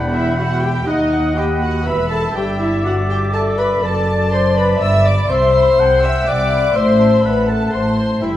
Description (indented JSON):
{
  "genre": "quick classical-period movement for symphony orchestra",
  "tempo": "122 BPM",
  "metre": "3/4",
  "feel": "straight",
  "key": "unclear",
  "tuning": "A4 = 440 Hz",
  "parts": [
    { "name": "dark studio violin section", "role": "melody", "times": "0.0-8.4 s", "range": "D5 to E6", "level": "-27 LUFS", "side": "left 2 dB", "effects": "none" },
    { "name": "bright clarinet", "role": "second line", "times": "0.0-8.4 s", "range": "D5 to G5", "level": "-26 LUFS", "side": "left 1 dB", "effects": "none" },
    { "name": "clear oboe", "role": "second line", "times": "0.0-8.4 s", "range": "D5 to G5", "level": "-26 LUFS", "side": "right 2 dB", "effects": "none" },
    { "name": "flute section", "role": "second line", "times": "0.0-8.4 s", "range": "G5 to D#6", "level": "-28 LUFS", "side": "right 1 dB", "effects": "none" },
    { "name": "warm studio violin section", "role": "second line", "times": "0.0-8.4 s", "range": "D5 to E6", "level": "-29 LUFS", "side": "left 1 dB", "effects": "none" },
    { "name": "warm French horn section", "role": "sustained chords", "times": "0.0-8.3 s", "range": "D4 to E5", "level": "-18 LUFS", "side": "left 3 dB", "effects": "none" },
    { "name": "rich studio double bass section", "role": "bass", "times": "0.0-8.4 s", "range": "E1 to D#2", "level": "-22 LUFS", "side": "right 1 dB", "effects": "none" },
    { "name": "warm studio cello section", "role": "bass", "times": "0.0-8.4 s", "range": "D#2 to C3", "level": "-20 LUFS", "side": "right 1 dB", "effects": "none" },
    { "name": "rich studio viola section", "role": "accompaniment", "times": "0.1-8.4 s", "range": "D#4 to E5", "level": "-24 LUFS", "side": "right 2 dB", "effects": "none" }
  ],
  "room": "wet recital hall reverb, RT60 1.7 s",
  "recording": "dark, warm production, vinyl crackle",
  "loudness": "-13 LUFS",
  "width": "side -12 dB against mid",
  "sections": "0.0-8.4 A section",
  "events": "none",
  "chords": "0.0 Em; 0.9 B/D#; 1.9 E5; 2.4 G5; 3.8 D/F#; 4.8 G; 5.3 C; 6.8 Am",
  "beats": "0.38 | 0.87 1.36 1.86 | 2.35 2.84 3.33 | 3.82 4.32 4.81 | 5.30 5.79 6.27 | 6.75 7.24 7.73 | 8.21"
}